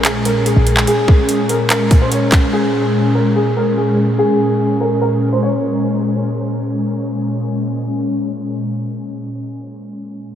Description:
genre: hip hop, trap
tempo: 145 BPM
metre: 4/4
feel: half-time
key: Bb minor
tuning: A4 = 440 Hz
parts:
  - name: dark baby grand piano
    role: melody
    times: 0.0-5.8 s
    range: Ab4 to Db5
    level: -19 LUFS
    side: equal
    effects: wide subtle chorus, low-pass filter, analog delay
  - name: ethereal airy pad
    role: sustained chords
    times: 0.0-9.1 s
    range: Bb2 to Db4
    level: -17 LUFS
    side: equal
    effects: ensemble chorus, built-in reverb, low-pass filter
  - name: short 808-style bass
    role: bass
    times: 0.0-0.9 s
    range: Bb1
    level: -17 LUFS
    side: equal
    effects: none
  - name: trap drum kit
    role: drums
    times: 0.0-2.4 s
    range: handclaps, hi-hat, kick drum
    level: -16 LUFS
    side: equal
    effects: none
room: wet huge ambient reverb, RT60 8.2 s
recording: dreamy mix soaked in reverb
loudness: -13 LUFS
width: side -10 dB against mid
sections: 0.0-9.2 A section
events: filter sweep 0.0-9.2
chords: 0.0 Bbm7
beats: 0.05 0.46 | 0.87 1.29 1.70 2.12 | 2.53 2.94 3.36 3.77 | 4.18 4.60 5.01 5.43 | 5.84 6.25 6.67 7.08 | 7.50 7.91 8.32 8.74

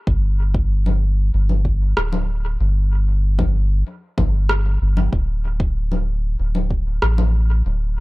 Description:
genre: ambient dub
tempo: 95 BPM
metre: 4/4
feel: straight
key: unclear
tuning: A4 = 440 Hz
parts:
  - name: soft dub sub bass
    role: bass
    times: 0.1-8.0 s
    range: D1 to A1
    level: -18 LUFS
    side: equal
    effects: tube saturation
  - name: electronic kick drum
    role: drums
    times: 0.1-6.8 s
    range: none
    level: -22 LUFS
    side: equal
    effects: none
  - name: electronic congas and rim click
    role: drums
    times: 0.9-7.3 s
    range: none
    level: -25 LUFS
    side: left 1 dB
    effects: dub echo
room: little or no reverb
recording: echo-heavy mix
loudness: -17 LUFS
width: side -21 dB against mid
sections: 0.0-8.0 A section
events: none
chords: none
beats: | 0.07 0.70 1.34 1.97 | 2.60 3.23 3.86 4.49 | 5.13 5.76 6.39 7.02 | 7.65

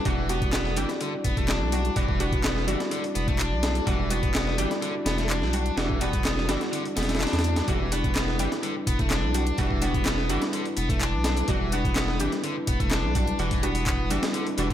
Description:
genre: breakbeat, breaks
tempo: 126 BPM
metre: 4/4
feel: straight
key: E minor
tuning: A4 = 442 Hz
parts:
  - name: dark analog pad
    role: sustained chords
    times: 0.0-14.7 s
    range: G3 to D5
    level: -32 LUFS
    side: equal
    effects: chorus, vintage 12-bit sampler grit, sidechain pumping
  - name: overdriven electric guitar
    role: riff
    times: 0.0-14.7 s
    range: D3 to D4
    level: -31 LUFS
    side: left 2 dB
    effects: tube saturation, vintage 12-bit sampler grit, digital delay
  - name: orchestra-hit-like synth stab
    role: stabs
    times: 0.1-14.7 s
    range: G3 to G4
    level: -32 LUFS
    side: right 1 dB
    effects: built-in reverb, digital delay
  - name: saturated sub bass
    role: bass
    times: 0.1-14.7 s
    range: E1 to E2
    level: -28 LUFS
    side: equal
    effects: none
  - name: breakbeat sampler-style drum kit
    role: drums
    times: 0.1-14.7 s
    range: hi-hat, kick drum, snare drum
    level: -28 LUFS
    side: equal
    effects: none
  - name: house drum kit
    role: drums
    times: 0.1-14.7 s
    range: handclaps, hi-hat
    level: -34 LUFS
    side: left 1 dB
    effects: overdrive
room: digital ambience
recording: none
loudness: -23 LUFS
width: side -11 dB against mid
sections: 0.0-14.7 A section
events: none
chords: 0.0 Em9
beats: | 0.06 0.54 1.01 1.49 | 1.96 2.44 2.92 3.39 | 3.87 4.34 4.82 5.30 | 5.77 6.25 6.73 7.20 | 7.68 8.15 8.63 9.11 | 9.58 10.06 10.54 11.01 | 11.49 11.96 12.44 12.92 | 13.39 13.87 14.35

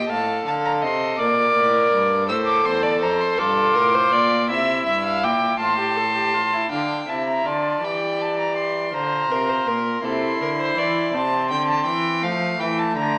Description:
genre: classical, baroque-style fugue for string quartet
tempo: 54 BPM (dotted quarters)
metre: 6/8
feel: straight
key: unclear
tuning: A4 = 443 Hz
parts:
  - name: rich violin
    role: melody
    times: 0.0-13.2 s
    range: F5 to E6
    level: -26 LUFS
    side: equal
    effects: none
  - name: warm violin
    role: second line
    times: 0.0-11.1 s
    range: A4 to A5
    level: -26 LUFS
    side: equal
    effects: none
  - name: rich viola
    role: accompaniment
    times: 0.0-13.2 s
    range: A3 to Bb4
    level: -26 LUFS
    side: equal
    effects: none
  - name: rich cello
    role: bass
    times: 0.0-13.2 s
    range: E2 to F3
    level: -29 LUFS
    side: equal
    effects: none
room: wet recital hall reverb, RT60 1.7 s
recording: small speaker sound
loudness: -21 LUFS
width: mono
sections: 0.0-6.7 A section; 6.7-13.2 B section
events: none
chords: 0.1 F7/A; 1.2 Bb; 2.3 F; 3.4 Gm; 4.5 C7; 5.6 F/A; 6.7 Dm; 7.8 C/E; 8.9 Bb; 10.0 Am/C; 12.2 F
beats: | 0.10 1.19 | 2.29 3.39 | 4.49 5.60 | 6.71 7.83 | 8.94 10.04 | 11.14 12.24

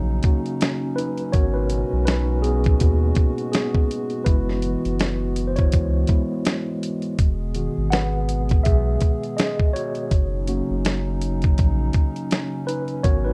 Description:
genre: lo-fi hip hop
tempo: 82 BPM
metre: 4/4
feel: swing 58% on 16ths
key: unclear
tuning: A4 = 440 Hz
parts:
  - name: mellow tine electric piano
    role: accompaniment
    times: 0.0-13.3 s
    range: D#3 to F#5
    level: -29 LUFS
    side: equal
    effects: low-pass filter
  - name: dark analog pad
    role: sustained chords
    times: 0.0-13.3 s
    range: B2 to G#4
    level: -31 LUFS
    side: equal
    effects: chorus, low-pass filter
  - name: soft dub sub bass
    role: bass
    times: 0.0-13.3 s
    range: E1 to D#2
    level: -26 LUFS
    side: equal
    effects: none
  - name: dusty soul sampler-style drum kit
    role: drums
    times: 0.2-13.2 s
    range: hi-hat, kick drum, snare drum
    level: -22 LUFS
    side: equal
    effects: none
room: light reverb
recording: none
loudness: -22 LUFS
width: mono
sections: 0.0-13.3 A section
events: tine electric piano solo 0.0-13.3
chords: 0.0 D#m7; 1.3 G#m9; 4.3 F#9sus4; 7.2 Emaj7; 10.1 D#m7/F#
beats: 0.60 | 1.33 2.07 2.80 3.53 | 4.26 4.99 5.72 6.46 | 7.19 7.92 8.65 9.38 | 10.12 10.85 11.58 12.31 | 13.04

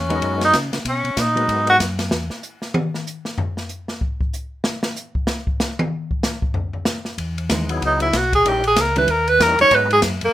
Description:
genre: soul jazz organ trio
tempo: 190 BPM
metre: 4/4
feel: swing 61% on 8ths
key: G# minor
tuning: A4 = 440 Hz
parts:
  - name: warm tenor saxophone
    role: melody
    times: 0.0-1.8, 7.9-10.3 s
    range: A#3 to C#5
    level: -15 LUFS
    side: right 1 dB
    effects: none
  - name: mellow tonewheel organ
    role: bass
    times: 0.0-2.3, 7.2-10.3 s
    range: A#1 to C#3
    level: -24 LUFS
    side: left 1 dB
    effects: chorus vibrato, slow rotary speaker
  - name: percussive tonewheel organ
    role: melody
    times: 0.1-1.8, 7.7-9.9 s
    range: F#3 to A#4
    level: -27 LUFS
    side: left 4 dB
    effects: slow rotary speaker, overdrive, chorus vibrato
  - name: vintage hollow-body jazz guitar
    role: accompaniment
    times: 0.1-1.8, 7.5-10.0 s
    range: D#3 to E4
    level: -27 LUFS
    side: right 1 dB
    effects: none
  - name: open jazz drum kit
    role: drums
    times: 0.1-10.3 s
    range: hi-hat, kick drum, ride cymbal, snare drum, toms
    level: -23 LUFS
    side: left 1 dB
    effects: none
room: moderate studio reverb, RT60 0.6 s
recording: rough home demo mix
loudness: -17 LUFS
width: side -14 dB against mid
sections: 0.0-10.3 A section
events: tenor saxophone solo 0.0-10.3; drum solo 2.1-7.2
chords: 0.0 G#m7; 2.1 N.C.; 7.2 Emaj7; 8.5 D#7b9; 9.7 G#m7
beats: 0.22 0.54 | 0.86 1.18 1.49 1.81 | 2.13 2.44 2.76 3.08 | 3.39 3.71 4.03 4.34 | 4.66 4.98 5.29 5.61 | 5.92 6.24 6.56 6.87 | 7.19 7.51 7.82 8.14 | 8.46 8.77 9.09 9.40 | 9.72 10.04

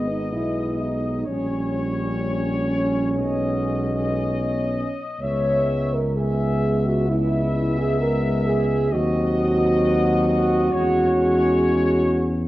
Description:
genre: classical, hymn-like piece for brass band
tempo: 56-68 BPM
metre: 4/4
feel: rubato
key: unclear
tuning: A4 = 437 Hz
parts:
  - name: clear trumpet section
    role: melody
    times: 0.0-12.4 s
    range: Db5 to E5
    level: -30 LUFS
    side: left 4 dB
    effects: none
  - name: dark French horn section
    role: second line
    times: 0.0-12.4 s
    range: Db4 to C#5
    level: -23 LUFS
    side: right 1 dB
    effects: none
  - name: mellow trombone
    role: accompaniment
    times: 0.0-12.4 s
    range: Gb3 to G#3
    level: -30 LUFS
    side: right 1 dB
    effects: none
  - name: warm euphonium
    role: accompaniment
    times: 0.0-12.4 s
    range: B3 to Db4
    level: -29 LUFS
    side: left 1 dB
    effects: none
  - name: mellow tuba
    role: bass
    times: 0.0-12.5 s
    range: G#1 to E2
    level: -24 LUFS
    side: equal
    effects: none
room: moderate scoring stage reverb, RT60 1.6 s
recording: worn, warbling old tape, cassette tape, warbly pitch drift, nothing above 10.6 kHz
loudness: -19 LUFS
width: side -16 dB against mid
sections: 0.0-12.5 A section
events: none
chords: 0.0 G#m; 1.3 Gdim/Bb; 3.2 G#m/B; 5.2 C#m7; 8.9 Cdim/Eb; 10.7 C#m/E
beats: 0.33 | 1.28 2.23 3.17 4.15 | 5.19 6.16 7.08 7.99 | 8.92 9.84 10.74 11.63

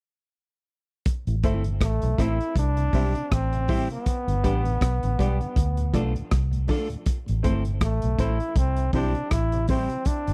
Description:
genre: roots reggae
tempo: 80 BPM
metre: 4/4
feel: swing 57% on 16ths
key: A minor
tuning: A4 = 441 Hz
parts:
  - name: crunchy breakbeat drum kit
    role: drums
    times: 1.1-10.3 s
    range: hi-hat, kick drum, rim click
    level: -28 LUFS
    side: equal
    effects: none
  - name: mellow tonewheel organ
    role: accompaniment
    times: 1.3-10.3 s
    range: D2 to E4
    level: -38 LUFS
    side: equal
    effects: none
  - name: vintage muted fingered electric bass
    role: bass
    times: 1.3-10.3 s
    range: G1 to D2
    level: -27 LUFS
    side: equal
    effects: none
  - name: clean electric guitar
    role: accompaniment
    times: 1.4-9.9 s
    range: G3 to A4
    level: -36 LUFS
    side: equal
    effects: spring reverb, dub echo
  - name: warm upright piano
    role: stabs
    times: 1.4-9.9 s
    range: C4 to E5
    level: -35 LUFS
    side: equal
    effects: none
  - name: brilliant trombone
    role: melody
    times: 1.8-10.3 s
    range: A3 to E4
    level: -31 LUFS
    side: equal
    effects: dub echo
room: little or no reverb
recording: dry, close 1970s-style studio recording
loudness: -24 LUFS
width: mono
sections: 1.1-10.3 A section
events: none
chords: 1.1 Am; 2.6 C; 4.1 G; 5.6 Dm; 7.1 Am; 8.6 C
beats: | 1.06 1.81 2.56 3.31 | 4.07 4.82 5.56 6.31 | 7.06 7.81 8.56 9.31 | 10.06

